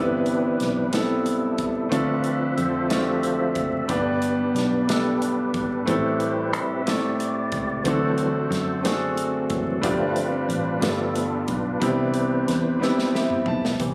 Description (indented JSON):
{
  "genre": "slow gospel",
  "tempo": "61 BPM (dotted quarters)",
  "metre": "6/8",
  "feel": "straight",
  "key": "C major",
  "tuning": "A4 = 439 Hz",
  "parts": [
    { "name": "clear baby grand piano", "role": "accompaniment", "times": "0.0-13.9 s", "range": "G2 to A5", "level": "-26 LUFS", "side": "equal", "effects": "none" },
    { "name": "tonewheel organ", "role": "sustained chords", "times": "0.0-13.9 s", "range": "E3 to E5", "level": "-29 LUFS", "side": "equal", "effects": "fast rotary speaker, chorus vibrato" },
    { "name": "fingered electric bass", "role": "bass", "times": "0.0-13.9 s", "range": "F#1 to F#2", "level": "-33 LUFS", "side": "equal", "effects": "none" },
    { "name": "natural country drum kit", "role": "drums", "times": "0.3-13.9 s", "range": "hi-hat, kick drum, snare drum, toms", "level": "-33 LUFS", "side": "equal", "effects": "none" },
    { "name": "glass harmonica", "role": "sustained chords", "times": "13.8-13.9 s", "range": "none", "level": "barely audible", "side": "none", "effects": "none" }
  ],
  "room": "light reverb, small room ambience",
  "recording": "recorded on a phone in the room, club reverb, compression",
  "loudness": "-24 LUFS",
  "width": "mono",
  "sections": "0.0-13.8 A section",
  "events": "tonewheel organ solo 0.0-13.8; drum fill 12.8-13.8; grand piano fill 12.8-13.8",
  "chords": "0.0 Cmaj7/G; 1.9 Dm7; 3.9 G; 5.9 Am7; 7.9 D7; 9.8 G7sus4; 10.8 G7; 11.8 Cmaj7"
}